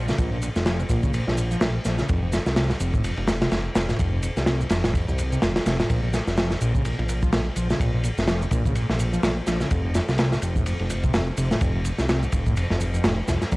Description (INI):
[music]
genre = breakbeat, breaks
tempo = 126 BPM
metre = 4/4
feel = swing 58% on 16ths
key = unclear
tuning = A4 = 440 Hz
[part]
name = overdriven acid bass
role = riff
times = 0.0-13.6 s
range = F2 to F3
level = -28 LUFS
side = equal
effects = distortion, wide subtle chorus, analog delay
[part]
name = fat analog bass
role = bass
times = 0.0-13.6 s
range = F1 to C2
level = -26 LUFS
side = equal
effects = none
[part]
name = crunchy breakbeat drum kit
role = drums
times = 0.1-13.6 s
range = kick drum, ride cymbal, snare drum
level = -24 LUFS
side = equal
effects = none
[part]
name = shaker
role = drums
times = 0.1-13.6 s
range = none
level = -42 LUFS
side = right 2 dB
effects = none
[sound]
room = little or no reverb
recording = dry, gritty hardware recording, vinyl crackle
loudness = -21 LUFS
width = side -22 dB against mid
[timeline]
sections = 0.0-13.6 A section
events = none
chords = 0.0 Bbm; 2.1 F5; 5.9 Bb5; 9.7 F5